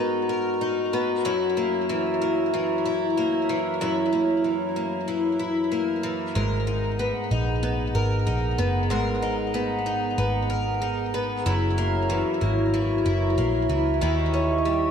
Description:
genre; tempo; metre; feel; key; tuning
dream pop; 94 BPM; 4/4; straight; unclear; A4 = 440 Hz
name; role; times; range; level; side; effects
warbly tape-like pad; sustained chords; 0.0-14.9 s; B3 to C#6; -26 LUFS; equal; chorus, built-in reverb
picked twelve-string acoustic guitar; arpeggios; 0.0-14.9 s; F#2 to A#4; -25 LUFS; left 1 dB; wide subtle chorus, ping-pong delay
vintage muted picked electric bass; bass; 6.4-14.9 s; F#1 to D#2; -26 LUFS; equal; none
room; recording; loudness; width
moderate recital hall reverb, RT60 1.4 s, small room reverb; dark, warm production; -22 LUFS; side -7 dB against mid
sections
0.0-14.9 A section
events
none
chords
0.0 G#m9; 1.3 F#7; 6.4 G#m9; 11.5 F#7; 14.0 D#7b9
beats
0.61 | 1.25 1.89 2.53 3.17 | 3.80 4.44 5.08 5.72 | 6.36 7.00 7.63 8.27 | 8.91 9.55 10.19 10.82 | 11.46 12.10 12.74 13.38 | 14.02 14.65

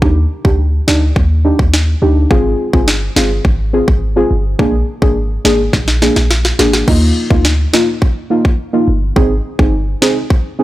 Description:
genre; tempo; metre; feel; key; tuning
dancehall; 105 BPM; 4/4; straight; unclear; A4 = 440 Hz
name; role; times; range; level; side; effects
deep mellow chord stab; accompaniment; 0.0-10.6 s; Bb3 to Ab4; -15 LUFS; equal; chorus, sidechain pumping
clean 808-style bass; bass; 0.0-10.0 s; G1 to Eb2; -14 LUFS; equal; transformer saturation
island pop drum kit; drums; 0.0-10.4 s; crash cymbal, kick drum, snare drum; -13 LUFS; equal; overdrive
room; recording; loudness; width
little or no reverb; blown-out, overdriven recording, overdrive; -10 LUFS; side -16 dB against mid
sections
0.0-6.9 A section; 6.9-10.6 B section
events
drum fill 5.7-6.9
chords
0.0 Ebmaj7; 2.3 Ab6; 4.6 Bb7; 6.9 Ebsus2; 9.2 Ab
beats
| 0.02 0.59 1.16 1.74 | 2.31 2.88 3.45 4.02 | 4.59 5.16 5.74 6.31 | 6.88 7.45 8.02 8.59 | 9.16 9.73 10.31

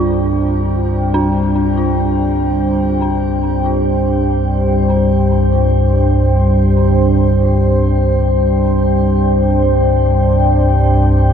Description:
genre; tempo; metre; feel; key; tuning
dark ambient drone; free time; none; none; unclear; A4 = 440 Hz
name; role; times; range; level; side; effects
deep dark ambient pad; sustained chords; 0.0-11.3 s; G3 to G5; -15 LUFS; equal; chorus, built-in reverb, shimmer reverb
dark detuned synth bell; arpeggios; 0.0-11.3 s; D4 to F4; -23 LUFS; equal; chorus, ping-pong delay, shimmer reverb
deep rumbling drone; drone; 0.0-11.3 s; C2 to G2; -14 LUFS; equal; built-in reverb, phaser, lush chorus
room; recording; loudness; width
wet huge ambient reverb, RT60 8.4 s; dreamy mix soaked in reverb, cassette tape; -12 LUFS; side -8 dB against mid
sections
0.0-11.3 A section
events
none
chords
0.0 Csus2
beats
free time

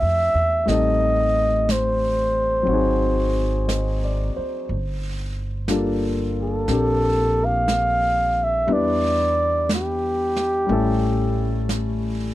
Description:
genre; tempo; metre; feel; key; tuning
jazz ballad; 60 BPM; 4/4; swing 68% on 8ths; unclear; A4 = 440 Hz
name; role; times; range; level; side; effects
mellow flugelhorn; melody; 0.0-11.7 s; G4 to F5; -21 LUFS; right 1 dB; none
warm grand piano; accompaniment; 0.0-12.3 s; F#3 to D#5; -25 LUFS; left 3 dB; none
upright bass; bass; 0.0-12.3 s; G1 to F2; -24 LUFS; right 1 dB; none
jazz brush drum kit; drums; 0.7-12.3 s; brushed snare drum, hi-hat, snare drum; -31 LUFS; right 2 dB; none
room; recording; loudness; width
little or no reverb; dry, close 1970s-style studio recording; -19 LUFS; side -15 dB against mid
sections
0.0-12.3 A section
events
none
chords
0.0 F69; 0.7 Am7b5; 2.7 G#7; 4.7 Gm9; 8.7 Em7; 10.7 A7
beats
| 0.68 1.68 2.68 3.68 | 4.69 5.69 6.70 7.70 | 8.70 9.71 10.71 11.71

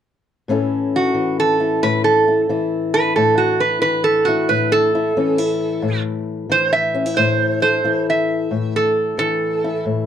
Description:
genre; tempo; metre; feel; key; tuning
acoustic country blues, solo or duo; 90 BPM; 4/4; swing 66% on 8ths; A major; A4 = 438 Hz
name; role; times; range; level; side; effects
fingerpicked old ladder-braced acoustic guitar; accompaniment; 0.5-10.1 s; A2 to A4; -20 LUFS; left 5 dB; none
metal-body resonator slide guitar; melody; 1.0-9.8 s; F#4 to E5; -16 LUFS; right 3 dB; none
room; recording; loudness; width
light reverb; dark, warm production; -15 LUFS; side -9 dB against mid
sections
0.5-10.1 A section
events
none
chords
0.5 A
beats
| 0.49 1.15 1.82 2.49 | 3.16 3.83 4.50 5.17 | 5.84 6.51 7.18 7.85 | 8.52 9.19 9.86

